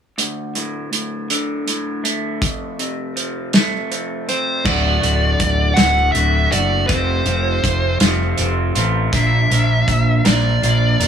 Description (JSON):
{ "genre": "quiet-loud alternative rock", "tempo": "54 BPM (dotted quarters)", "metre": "6/8", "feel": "straight", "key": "unclear", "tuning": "A4 = 440 Hz", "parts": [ { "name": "electric guitar through a small old amp", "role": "arpeggios", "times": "0.2-11.1 s", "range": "D2 to Bb4", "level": "-22 LUFS", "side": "right 1 dB", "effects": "spring reverb" }, { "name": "loose indie drum kit", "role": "drums", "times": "0.2-11.1 s", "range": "crash cymbal, hi-hat, kick drum, snare drum", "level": "-18 LUFS", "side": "right 1 dB", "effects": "none" }, { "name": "dark smooth lead guitar", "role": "melody", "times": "4.3-11.1 s", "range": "C5 to F#5", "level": "-20 LUFS", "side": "equal", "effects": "overdrive, analog delay" }, { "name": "growling picked electric bass", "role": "bass", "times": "4.6-11.1 s", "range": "D1 to Bb1", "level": "-18 LUFS", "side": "equal", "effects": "overdrive" } ], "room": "little or no reverb", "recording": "none", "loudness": "-15 LUFS", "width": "side -8 dB against mid", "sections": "0.2-4.7 A section; 4.7-11.1 B section", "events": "none", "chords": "0.2 D5; 2.4 F; 4.7 D; 6.9 F; 9.1 Bb", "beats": "| 0.19 1.31 | 2.43 3.54 | 4.66 5.78 | 6.90 8.02 | 9.14 10.26" }